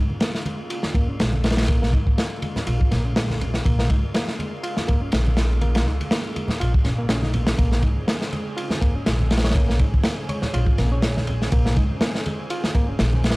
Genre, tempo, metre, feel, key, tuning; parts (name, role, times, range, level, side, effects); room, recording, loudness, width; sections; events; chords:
breakbeat, breaks; 122 BPM; 4/4; swing 55% on 16ths; Bb minor; A4 = 443 Hz
lush unison pad; sustained chords; 0.1-13.4 s; Db3 to Ab4; -34 LUFS; equal; chorus, sidechain pumping
upright bass; bass; 0.0-13.4 s; Bb1 to Eb2; -23 LUFS; equal; tube saturation
congas; percussion; 0.1-13.2 s; -31 LUFS; right 1 dB
barky reed electric piano; riff; 0.2-13.1 s; Ab3 to F4; -31 LUFS; equal; low-pass filter, tape echo
crunchy breakbeat drum kit; drums; 0.2-13.4 s; kick drum, ride cymbal, snare drum; -22 LUFS; equal
thumb-piano-like synth pluck; melody; 9.4-11.1 s; Db5; -36 LUFS; right 1 dB; chorus, phaser, small speaker sound, tape echo
little or no reverb; dry, gritty hardware recording, vinyl crackle; -19 LUFS; side -23 dB against mid
0.0-13.4 A section
filter sweep on reed electric piano 0.0-13.4
0.0 Bbm7